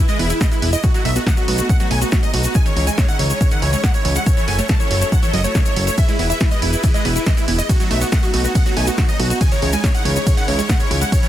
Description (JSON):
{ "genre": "uplifting trance", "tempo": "140 BPM", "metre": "4/4", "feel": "straight", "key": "unclear", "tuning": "A4 = 440 Hz", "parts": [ { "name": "big supersaw lead", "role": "melody", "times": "0.0-11.3 s", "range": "E4 to A5", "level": "-24 LUFS", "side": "right 1 dB", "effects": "sidechain pumping, digital delay" }, { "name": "plucky unison lead", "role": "second line", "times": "0.0-11.3 s", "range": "E4 to A5", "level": "-28 LUFS", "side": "equal", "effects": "phaser, sidechain pumping, digital delay" }, { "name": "rich symphonic string section", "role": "sustained chords", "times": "0.0-11.3 s", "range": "C#3 to B4", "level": "-27 LUFS", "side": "left 1 dB", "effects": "sidechain pumping" }, { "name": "wide unison pluck", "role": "arpeggios", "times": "0.0-11.3 s", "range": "C#3 to E4", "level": "-26 LUFS", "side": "right 3 dB", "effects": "sidechain pumping, digital delay" }, { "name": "punchy analog drum machine", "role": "drums", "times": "0.1-11.3 s", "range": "hi-hat, ride cymbal, snare drum", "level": "-25 LUFS", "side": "right 1 dB", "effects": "sidechain pumping on hats, sidechain pumping on cymbals" }, { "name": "egg shaker", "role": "percussion", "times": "0.1-11.3 s", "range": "none", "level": "-30 LUFS", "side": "left 4 dB", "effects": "none" }, { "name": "fat analog bass", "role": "bass", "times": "0.2-11.0 s", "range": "E1 to C#2", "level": "-19 LUFS", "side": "equal", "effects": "sidechain pumping" }, { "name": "electronic kick drum", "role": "drums", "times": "0.4-11.2 s", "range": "none", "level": "-17 LUFS", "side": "equal", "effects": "none" } ], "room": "little or no reverb", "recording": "dense, heavily limited modern master", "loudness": "-14 LUFS", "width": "side -12 dB against mid", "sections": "0.0-11.3 A section", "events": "none", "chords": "0.0 E; 0.8 B7; 2.5 C#madd9; 4.3 F#m7; 6.0 E; 7.7 B7; 9.4 C#madd9" }